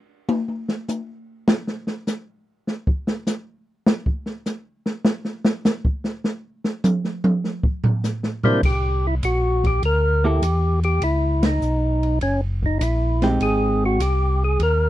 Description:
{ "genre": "soul jazz organ trio", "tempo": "101 BPM", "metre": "4/4", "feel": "swing 69% on 8ths", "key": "unclear", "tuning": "A4 = 439 Hz", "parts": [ { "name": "open jazz drum kit", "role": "drums", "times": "0.3-14.8 s", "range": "crash cymbal, hi-hat, kick drum, ride cymbal, snare drum, toms", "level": "-21 LUFS", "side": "equal", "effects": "none" }, { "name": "percussive tonewheel organ", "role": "melody", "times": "8.4-14.9 s", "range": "C3 to C5", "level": "-22 LUFS", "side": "equal", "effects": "slow rotary speaker, overdrive" }, { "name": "mellow tonewheel organ", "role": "bass", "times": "8.6-14.9 s", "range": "F#1 to E2", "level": "-21 LUFS", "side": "equal", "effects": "chorus vibrato, slow rotary speaker" }, { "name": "hollow-body jazz guitar", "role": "accompaniment", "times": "10.2-14.0 s", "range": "G#3 to A4", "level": "-21 LUFS", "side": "right 1 dB", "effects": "none" } ], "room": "light reverb", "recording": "dry, close 1970s-style studio recording", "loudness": "-19 LUFS", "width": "side -14 dB against mid", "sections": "0.0-8.6 A section; 8.6-14.9 B section", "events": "drum solo 0.0-8.6; band accent 11.3", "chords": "0.0 N.C.; 7.4 C7; 8.6 C9; 11.0 Badd9; 12.2 F#add9; 13.4 Abmaj7" }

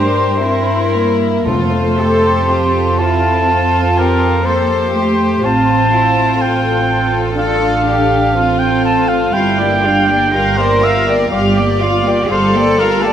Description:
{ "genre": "classical, slow romantic movement for symphony orchestra", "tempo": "61 BPM", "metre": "4/4", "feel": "rubato", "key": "F major", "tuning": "A4 = 443 Hz", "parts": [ { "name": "warm studio violin section", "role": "melody", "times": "0.0-13.1 s", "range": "A4 to F5", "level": "-20 LUFS", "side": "left 6 dB", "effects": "none" }, { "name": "warm cor anglais", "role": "second line", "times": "0.0-13.1 s", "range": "Bb4 to A5", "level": "-16 LUFS", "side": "right 1 dB", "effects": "none" }, { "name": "warm symphonic violin section", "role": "second line", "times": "0.0-13.1 s", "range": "E4 to G4", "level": "-23 LUFS", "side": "left 4 dB", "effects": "none" }, { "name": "dark symphonic viola section", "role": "accompaniment", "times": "0.0-13.1 s", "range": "G3 to D4", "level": "-19 LUFS", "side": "equal", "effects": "none" }, { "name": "rich symphonic double bass section", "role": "bass", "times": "0.0-13.1 s", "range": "G1 to G2", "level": "-19 LUFS", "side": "right 2 dB", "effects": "none" }, { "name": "warm symphonic cello section", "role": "bass", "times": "0.0-13.1 s", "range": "D4 to Bb4", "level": "-20 LUFS", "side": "right 1 dB", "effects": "none" }, { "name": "timpani", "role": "percussion", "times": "1.5-2.9 s", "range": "F2", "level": "-23 LUFS", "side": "left 2 dB", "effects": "none" } ], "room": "wet scoring stage reverb, RT60 1.8 s", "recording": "none", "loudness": "-11 LUFS", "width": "side -9 dB against mid", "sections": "0.0-13.1 A section", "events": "none", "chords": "0.0 C7/G; 1.5 F; 5.4 F/A; 9.3 Gm7" }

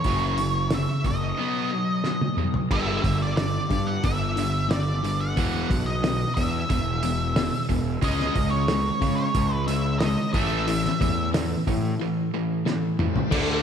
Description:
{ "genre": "classic rock", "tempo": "90 BPM", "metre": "4/4", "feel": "straight", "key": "unclear", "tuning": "A4 = 440 Hz", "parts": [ { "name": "octave-fuzz lead guitar", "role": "melody", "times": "0.0-11.3 s", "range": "C#5 to F#5", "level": "-29 LUFS", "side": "right 1 dB", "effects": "distortion, slapback echo, analog delay" }, { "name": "tight distorted guitar", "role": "riff", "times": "0.0-13.6 s", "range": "E2 to C#4", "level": "-30 LUFS", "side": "right 11 dB", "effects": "distortion" }, { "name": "fuzz picked electric bass", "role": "bass", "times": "0.0-13.6 s", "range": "E1 to C#3", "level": "-28 LUFS", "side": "equal", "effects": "overdrive" }, { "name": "cloth-damped thuddy drum kit", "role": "drums", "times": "0.0-13.5 s", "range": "crash cymbal, hi-hat, kick drum, snare drum, toms", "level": "-27 LUFS", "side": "equal", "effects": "none" }, { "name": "sludgy distorted guitar", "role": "riff", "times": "0.1-13.6 s", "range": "E2 to D4", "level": "-29 LUFS", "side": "left 9 dB", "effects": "overdrive" }, { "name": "bright tonewheel organ", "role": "sustained chords", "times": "13.0-13.6 s", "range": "A3 to F5", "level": "-37 LUFS", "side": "left 1 dB", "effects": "slow rotary speaker, overdrive" }, { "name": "crunchy overdriven guitar", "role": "riff", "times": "13.3-13.6 s", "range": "D3 to D4", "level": "-28 LUFS", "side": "left 2 dB", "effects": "none" } ], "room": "moderate lush hall reverb, RT60 2.8 s", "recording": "big arena sound", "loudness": "-22 LUFS", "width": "side -8 dB against mid", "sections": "0.0-2.7 A section; 2.7-13.3 B section", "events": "drum fill 2.0-2.7, 12.7-13.3", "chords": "0.0 F#5; 1.4 B; 2.7 G5; 5.4 E5; 8.0 C#5; 10.3 A5" }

